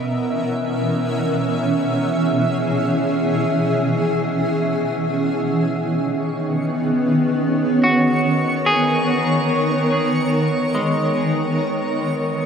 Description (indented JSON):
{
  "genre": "ambient",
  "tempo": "free time",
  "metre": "none",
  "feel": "none",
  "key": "B major",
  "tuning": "A4 = 440 Hz",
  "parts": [
    { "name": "granular cloud pad", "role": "sustained chords", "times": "0.0-12.5 s", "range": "B2 to E5", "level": "-18 LUFS", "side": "equal", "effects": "built-in reverb" },
    { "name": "backwards swelling texture", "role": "texture", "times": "6.2-12.5 s", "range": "C#6", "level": "-30 LUFS", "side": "right 1 dB", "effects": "built-in reverb" },
    { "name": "clean electric guitar", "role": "arpeggios", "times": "7.8-12.5 s", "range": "G#3 to G#4", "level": "-22 LUFS", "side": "equal", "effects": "diffuse ambient delay" }
  ],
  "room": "wet huge ambient reverb, RT60 7.9 s",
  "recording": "none",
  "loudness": "-17 LUFS",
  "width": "side -7 dB against mid",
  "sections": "0.0-5.3 A section; 5.3-12.5 B section",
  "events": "fade-out on clean electric guitar 5.3-12.5",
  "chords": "0.0 C#m/B; 5.3 Bmaj9",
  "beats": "free time"
}